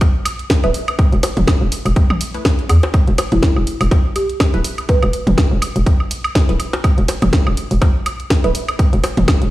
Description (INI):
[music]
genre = minimal techno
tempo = 123 BPM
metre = 4/4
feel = swing 56% on 16ths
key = E minor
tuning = A4 = 440 Hz
[part]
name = electronic kick drum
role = drums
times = 0.0-9.4 s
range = none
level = -15 LUFS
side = equal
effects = overdrive
[part]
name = house drum kit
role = drums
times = 0.0-9.5 s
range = hi-hat, snare drum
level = -22 LUFS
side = equal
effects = overdrive
[part]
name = electronic bongos, woodblock and toms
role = percussion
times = 0.0-9.4 s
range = none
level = -22 LUFS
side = right 1 dB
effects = dub echo
[part]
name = filtered dub chord stab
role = stabs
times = 0.6-8.5 s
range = A3 to B4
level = -25 LUFS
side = right 2 dB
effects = phaser, dub echo
[part]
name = hollow knocking FM bass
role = bass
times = 0.6-9.5 s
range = D1 to E2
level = -16 LUFS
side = equal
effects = sidechain pumping
[part]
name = buzzing marimba with soft mallets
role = melody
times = 3.3-5.6 s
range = E4 to B4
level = -22 LUFS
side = right 1 dB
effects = dub echo
[sound]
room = little or no reverb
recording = played on a big sound system in a bare room, stone room reverb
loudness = -13 LUFS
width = side -16 dB against mid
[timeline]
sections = 0.0-9.5 A section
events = none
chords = none